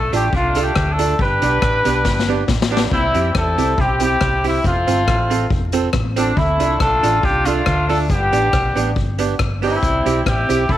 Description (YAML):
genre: ska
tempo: 139 BPM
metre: 4/4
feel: straight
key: C major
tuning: A4 = 440 Hz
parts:
  - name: clear horn section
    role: melody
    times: 0.0-10.8 s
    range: G3 to B4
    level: -18 LUFS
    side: left 1 dB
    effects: none
  - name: hollow-body short-scale fingered electric bass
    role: bass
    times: 0.0-10.8 s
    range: F1 to F2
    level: -22 LUFS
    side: equal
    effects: none
  - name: archtop guitar, miked and amplified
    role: accompaniment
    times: 0.1-10.6 s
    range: B3 to A4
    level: -22 LUFS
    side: right 6 dB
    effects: none
  - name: street-band drum kit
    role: drums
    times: 0.1-10.8 s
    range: hi-hat, kick drum, rim click, snare drum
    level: -21 LUFS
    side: left 2 dB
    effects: none
room: light reverb, small room ambience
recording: 1960s-style stereo, vinyl crackle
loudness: -15 LUFS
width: side -12 dB against mid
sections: 0.0-10.8 A section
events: drum fill 2.1-2.9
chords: 0.0 Dm; 1.2 G; 2.9 C; 4.6 F; 6.4 Dm; 8.1 G; 9.8 C